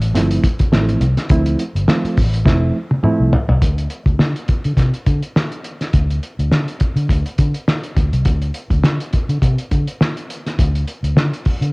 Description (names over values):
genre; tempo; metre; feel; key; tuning
funk; 103 BPM; 4/4; swing 56% on 16ths; D minor; A4 = 436 Hz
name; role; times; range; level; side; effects
vintage muted fingered electric bass; bass; 0.0-11.7 s; F1 to D3; -17 LUFS; equal; none
cloth-damped thuddy drum kit; drums; 0.0-11.7 s; hi-hat, kick drum, snare drum, toms; -17 LUFS; equal; cassette tape
reed electric piano; stabs; 0.1-3.4 s; F3 to F4; -20 LUFS; right 2 dB; cassette tape
room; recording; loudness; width
small room ambience; home recording on cassette; -14 LUFS; side -28 dB against mid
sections
0.0-3.6 A section; 3.6-11.7 B section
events
drum fill 2.5-3.6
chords
0.0 Dm7 (rootless); 3.6 N.C.